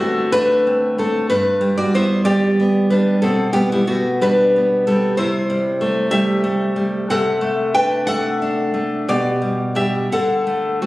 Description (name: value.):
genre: romantic piece for solo classical guitar.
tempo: 62 BPM (dotted quarters).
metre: 6/8.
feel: uneven beats, rubato.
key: G major.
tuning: A4 = 444 Hz.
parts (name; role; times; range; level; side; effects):
nylon-string guitar; solo; 0.0-10.9 s; G2 to G5; -15 LUFS; equal; none.
room: moderate scoring stage reverb, RT60 1.6 s.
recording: recorded on a phone in the room, studio reverb.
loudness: -15 LUFS.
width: side -18 dB against mid.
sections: 0.0-10.9 A section.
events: none.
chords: 0.0 D5; 1.3 G; 3.2 G/B; 5.2 Am7/C; 7.1 D7/C; 9.1 G/B; 10.1 D.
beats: 0.32 | 1.29 2.27 | 3.20 4.22 | 5.18 6.12 | 7.08 8.06 | 9.06 10.09.